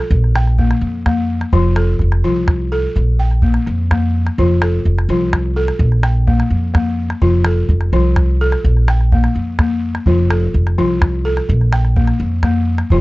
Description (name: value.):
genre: west african traditional, West African string and xylophone music.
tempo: 84 BPM (dotted quarters).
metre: 12/8.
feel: straight.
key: unclear.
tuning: A4 = 440 Hz.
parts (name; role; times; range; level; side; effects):
balafon; arpeggios; 0.0-13.0 s; F3 to G5; -18 LUFS; left 2 dB; none.
upright bass; bass; 0.1-13.0 s; F1 to F2; -15 LUFS; equal; none.
calabash; percussion; 0.1-13.0 s; none; -16 LUFS; equal; none.
room: little or no reverb.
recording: dry, gritty hardware recording, transformer saturation, cassette tape, nothing above 7.8 kHz.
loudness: -13 LUFS.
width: side -20 dB against mid.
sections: 0.0-13.0 A section.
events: none.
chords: 0.1 Bb5; 1.5 F; 3.0 Bb5; 4.4 F; 5.8 Bb5; 7.2 F; 8.6 Bb5; 10.1 F; 11.5 Bb5.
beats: 0.11 0.82 | 1.53 2.25 2.96 3.67 | 4.38 5.09 5.80 6.51 | 7.22 7.93 8.64 9.35 | 10.07 10.78 11.49 12.20 | 12.92.